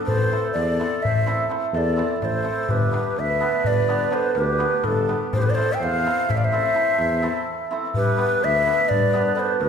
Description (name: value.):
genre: balkan folk, Balkan wedding band.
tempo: 251 BPM (eighths).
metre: 11/8.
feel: straight.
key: A minor.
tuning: A4 = 440 Hz.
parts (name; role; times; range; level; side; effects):
breathy reedy ney; melody; 0.1-9.7 s; A4 to G5; -23 LUFS; left 2 dB; none.
warm clarinet; second line; 0.1-9.7 s; D4 to E5; -28 LUFS; right 3 dB; none.
mellow tuba; bass; 0.1-9.7 s; G1 to G2; -28 LUFS; left 1 dB; none.
darbuka; percussion; 0.1-9.7 s; none; -26 LUFS; left 2 dB; none.
hammered dulcimer; accompaniment; 0.3-9.5 s; B3 to C5; -26 LUFS; right 4 dB; none.
room: wet recital hall reverb, RT60 1.4 s.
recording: recorded in a church or concert hall.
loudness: -19 LUFS.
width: side -7 dB against mid.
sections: 0.0-7.9 A section; 7.9-9.7 A section.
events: break 7.5-7.9.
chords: 0.1 Am; 2.7 G; 5.3 Am; 7.9 G.